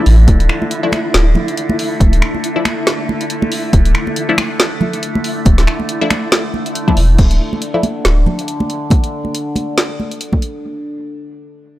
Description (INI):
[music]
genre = deep dubstep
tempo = 139 BPM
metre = 4/4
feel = swing 57% on 16ths, half-time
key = D minor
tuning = A4 = 440 Hz
[part]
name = overtone-sweeping drone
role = sustained chords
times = 0.0-10.7 s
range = D3 to D4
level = -23 LUFS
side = equal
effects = chorus, built-in reverb
[part]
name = filtered dub chord stab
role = stabs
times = 0.0-7.9 s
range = F3 to E4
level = -21 LUFS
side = left 3 dB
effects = phaser, dub echo
[part]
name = flickering grainy texture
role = texture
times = 0.0-7.2 s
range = E4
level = -24 LUFS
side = equal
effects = built-in reverb
[part]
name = saturated sub bass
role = bass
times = 0.1-8.3 s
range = D1 to A1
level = -11 LUFS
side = equal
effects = transformer saturation
[part]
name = deep house drum kit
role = drums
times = 0.1-10.5 s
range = crash cymbal, finger snaps, hi-hat, snare drum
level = -18 LUFS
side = equal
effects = none
[part]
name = electronic kick drum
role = drums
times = 0.3-10.4 s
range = none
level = -12 LUFS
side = equal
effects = none
[part]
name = congas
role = percussion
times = 0.3-10.4 s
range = none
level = -22 LUFS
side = right 2 dB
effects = dub echo
[sound]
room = little or no reverb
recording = dry, gritty hardware recording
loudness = -13 LUFS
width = side -15 dB against mid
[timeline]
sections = 0.0-7.2 A section; 7.2-10.6 B section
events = drop 0.0-7.2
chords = 0.0 Dmadd9; 7.2 N.C.